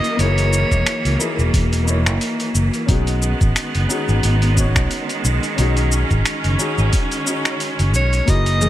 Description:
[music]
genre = sunset chillout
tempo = 89 BPM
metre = 4/4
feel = swing 56% on 16ths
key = unclear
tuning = A4 = 440 Hz
[part]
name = clear soprano saxophone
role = melody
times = 0.0-1.5, 8.0-8.7 s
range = C#5 to D#5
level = -23 LUFS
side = equal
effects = tape echo
[part]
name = warm concert grand piano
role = accompaniment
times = 0.0-8.7 s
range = A#3 to C#5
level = -26 LUFS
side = moving between left 7 dB and equal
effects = auto-pan, digital delay
[part]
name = clear studio string section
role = sustained chords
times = 0.0-8.7 s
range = D#3 to C#4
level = -23 LUFS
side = right 2 dB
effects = vintage 12-bit sampler grit
[part]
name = dusty soul sampler-style drum kit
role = drums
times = 0.0-8.7 s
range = cabasa, finger snaps, hi-hat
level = -24 LUFS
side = left 1 dB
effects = overdrive
[part]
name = fingered electric bass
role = bass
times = 0.2-8.7 s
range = E1 to C#2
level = -18 LUFS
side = equal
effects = none
[part]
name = electronic kick drum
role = drums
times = 0.7-8.4 s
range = none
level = -18 LUFS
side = equal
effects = overdrive
[part]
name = soft round pluck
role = arpeggios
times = 8.3-8.7 s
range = F#4 to G#4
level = -27 LUFS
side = right 4 dB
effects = chorus
[part]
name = congas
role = percussion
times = 8.6-8.7 s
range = none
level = -18 LUFS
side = left 3 dB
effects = none
[sound]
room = light reverb, small room ambience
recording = none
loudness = -16 LUFS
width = side -13 dB against mid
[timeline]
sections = 0.0-8.7 A section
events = none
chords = 0.0 F#13; 2.9 B69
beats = | 0.19 0.86 1.54 2.21 | 2.89 3.56 4.24 4.91 | 5.58 6.26 6.93 7.61 | 8.28

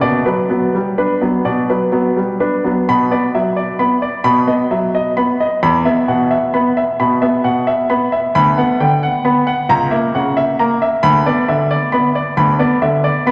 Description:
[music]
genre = classical, baroque-style suite movement for grand piano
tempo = 88 BPM (dotted quarters)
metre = 12/8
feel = rubato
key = B minor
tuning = A4 = 440 Hz
[part]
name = bright baby grand piano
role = solo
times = 0.0-13.3 s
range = C#2 to B5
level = -15 LUFS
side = equal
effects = none
[sound]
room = wet church reverb, RT60 3.2 s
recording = none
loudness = -15 LUFS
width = mono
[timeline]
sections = 0.0-2.9 A section; 2.9-13.3 B section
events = none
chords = 0.0 Bm; 4.3 B; 5.6 E5; 8.4 Bm/D; 9.7 F#7/C#; 11.0 Bm/D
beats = | 0.02 0.74 1.46 2.17 | 2.89 3.57 4.26 4.95 | 5.63 6.32 7.00 7.67 | 8.35 9.03 9.70 10.37 | 11.04 11.71 12.38 13.04

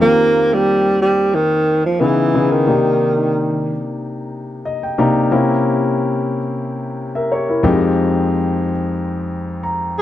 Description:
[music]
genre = soul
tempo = 90 BPM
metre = 4/4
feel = swing 54% on 16ths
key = C minor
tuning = A4 = 440 Hz
[part]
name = breathy tenor saxophone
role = melody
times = 0.0-3.8, 10.0 s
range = Eb3 to Ab4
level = -15 LUFS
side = right 1 dB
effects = none
[part]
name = warm concert grand piano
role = accompaniment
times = 0.0-10.0 s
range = F2 to Bb5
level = -17 LUFS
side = left 2 dB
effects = none
[sound]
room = light reverb, small room ambience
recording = dry, close 1970s-style studio recording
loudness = -14 LUFS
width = side -12 dB against mid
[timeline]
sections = 0.0-10.0 A section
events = grand piano fill 4.3-5.3, 9.3-10.0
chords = 0.0 Eb6; 2.0 Dbm9; 2.7 Cm9; 5.3 C7b9; 7.7 Fm9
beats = | 0.00 0.67 1.33 2.00 | 2.66 3.33 3.99 4.66 | 5.32 5.99 6.66 7.32 | 7.99 8.65 9.32 9.98

